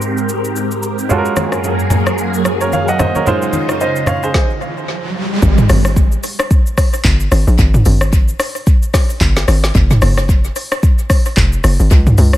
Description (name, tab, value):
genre	amapiano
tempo	111 BPM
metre	4/4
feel	swing 58% on 16ths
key	unclear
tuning	A4 = 440 Hz
part	bright baby grand piano	accompaniment	0.0-4.5 s	Ab3 to Gb5	-18 LUFS	right 3 dB	low-pass filter, tape echo
part	phased string machine	sustained chords	0.0-4.3 s	Gb2 to C5	-18 LUFS	equal	ensemble chorus, phaser, sidechain pumping, low-pass filter
part	deep house drum kit	drums	0.0-12.4 s	handclaps, hi-hat, kick drum, rim click, shaker, snare drum, toms	-13 LUFS	equal	tape echo
part	congas	percussion	1.1-4.2 s	none	-20 LUFS	left 1 dB	tape echo
part	riser	sound effects	4.4-5.4 s	none	-21 LUFS	right 2 dB	none
part	hollow log drum bass	bass	5.4-12.4 s	F1 to Db2	-12 LUFS	equal	none
room	digital ambience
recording	echo-heavy mix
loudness	-11 LUFS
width	side -14 dB against mid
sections	0.0-5.4 A section; 5.4-12.4 B section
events	filter sweep 0.0-5.4; stop 4.3-5.4; riser 4.4-5.4; drop 5.4-12.4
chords	0.0 Abmaj9; 1.1 Gbmaj9; 3.3 Dbmaj9; 5.4 N.C.